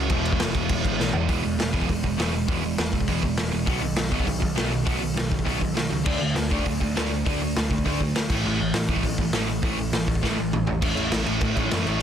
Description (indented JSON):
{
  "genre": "punk rock",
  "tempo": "202 BPM",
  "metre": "4/4",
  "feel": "straight",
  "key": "E major",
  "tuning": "A4 = 440 Hz",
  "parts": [
    { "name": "overdriven semi-hollow guitar", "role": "riff", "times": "0.0-12.0 s", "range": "E2 to D4", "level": "-29 LUFS", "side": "left 12 dB", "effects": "none" },
    { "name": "sludgy distorted guitar", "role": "riff", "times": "0.0-12.0 s", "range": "A2 to E4", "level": "-27 LUFS", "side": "right 12 dB", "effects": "overdrive" },
    { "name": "overdriven picked electric bass", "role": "bass", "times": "0.0-12.0 s", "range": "E1 to F#2", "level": "-30 LUFS", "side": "equal", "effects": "none" },
    { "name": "raw garage drum kit", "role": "drums", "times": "0.1-11.9 s", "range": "crash cymbal, hi-hat, kick drum, snare drum, toms", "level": "-26 LUFS", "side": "equal", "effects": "none" }
  ],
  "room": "little or no reverb",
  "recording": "dense, heavily limited modern master",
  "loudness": "-22 LUFS",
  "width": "side -9 dB against mid",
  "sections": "0.0-1.3 A section; 1.3-10.8 B section; 10.8-12.0 C section",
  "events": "drum fill 1.0, 10.2-10.8",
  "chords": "0.1 E; 3.7 B; 6.1 D5; 8.3 A5; 10.8 A"
}